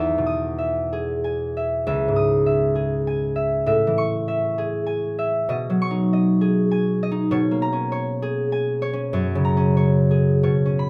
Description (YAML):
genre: classical, solo harp piece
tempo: 99 BPM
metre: 3/4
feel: uneven beats, rubato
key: unclear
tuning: A4 = 440 Hz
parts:
  - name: concert harp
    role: solo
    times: 0.0-10.9 s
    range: C#2 to D#6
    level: -22 LUFS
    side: equal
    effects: none
room: light reverb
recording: close, detailed microphones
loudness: -22 LUFS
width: mono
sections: 0.0-10.9 A section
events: none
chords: 0.0 Emaj7; 1.9 C#madd9; 3.7 Amaj7; 5.5 B69; 7.3 C#5/B; 9.1 F#add9